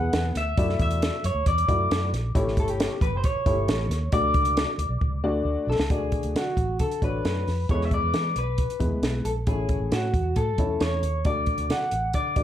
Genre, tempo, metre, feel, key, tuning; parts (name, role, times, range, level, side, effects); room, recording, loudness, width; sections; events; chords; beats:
uptempo 1960s-style soul; 135 BPM; 4/4; straight; A4 = 440 Hz
electric guitar through a small old amp; melody; 0.0-12.4 s; F#4 to F#5; -28 LUFS; left 1 dB; tape echo
dark upright piano; accompaniment; 0.0-12.4 s; G#3 to F#5; -30 LUFS; left 2 dB
vintage muted fingered electric bass; bass; 0.0-12.4 s; F#1 to E3; -28 LUFS; equal
compact cocktail drum kit; drums; 0.1-12.4 s; hi-hat, kick drum, snare drum; -26 LUFS; right 1 dB
moderate small room reverb, RT60 0.5 s; -22 LUFS; side -11 dB against mid
0.0-5.9 A section; 5.9-12.4 B section
drum fill 5.0-5.9
0.0 E; 0.6 Dadd9; 2.4 A7; 4.1 D; 7.7 E; 9.5 A; 11.2 D
0.13 | 0.58 1.02 1.46 1.91 | 2.35 2.79 3.24 3.68 | 4.13 4.57 5.02 5.46 | 5.91 6.35 6.80 7.24 | 7.69 8.13 8.58 9.02 | 9.47 9.91 10.36 10.80 | 11.25 11.70 12.14